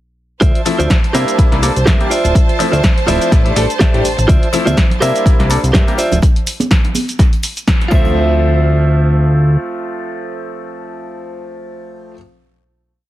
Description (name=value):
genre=filtered disco house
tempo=124 BPM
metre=4/4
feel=swing 56% on 16ths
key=D minor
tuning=A4 = 440 Hz
part: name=clear studio violin section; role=sustained chords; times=0.4-6.2 s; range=C5 to A5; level=-23 LUFS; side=right 3 dB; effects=sidechain pumping
part: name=direct-recorded clean electric guitar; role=riff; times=0.4-12.2 s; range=F4 to E5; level=-19 LUFS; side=right 2 dB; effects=vintage 12-bit sampler grit, sidechain pumping
part: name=fat analog bass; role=bass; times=0.4-9.6 s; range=D1 to C3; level=-14 LUFS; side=equal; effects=sidechain pumping
part: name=electronic kick drum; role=drums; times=0.4-8.0 s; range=none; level=-12 LUFS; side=equal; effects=none
part: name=punchy analog drum machine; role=drums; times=0.4-7.9 s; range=cabasa, hi-hat, snare drum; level=-20 LUFS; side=equal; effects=sidechain pumping on hats, sidechain pumping on perc
part: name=bright grand piano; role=accompaniment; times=0.7-12.2 s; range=F3 to E5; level=-20 LUFS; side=left 2 dB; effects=phaser, vintage 12-bit sampler grit, sidechain pumping
part: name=tambourine and congas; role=percussion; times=4.3-8.1 s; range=none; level=-23 LUFS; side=right 3 dB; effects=sidechain pumping on perc
room=little or no reverb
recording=heavily compressed radio sound, multiband compression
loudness=-11 LUFS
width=side -14 dB against mid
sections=0.4-8.2 drop; 8.2-12.0 final hit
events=drop 0.4-8.2; band accent 7.7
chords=0.4 Dm9; 1.1 C7; 2.1 Dm9; 3.3 A7sus4; 4.3 Dm9; 5.0 C7; 6.0 Dm9; 7.2 N.C.; 7.9 Dm9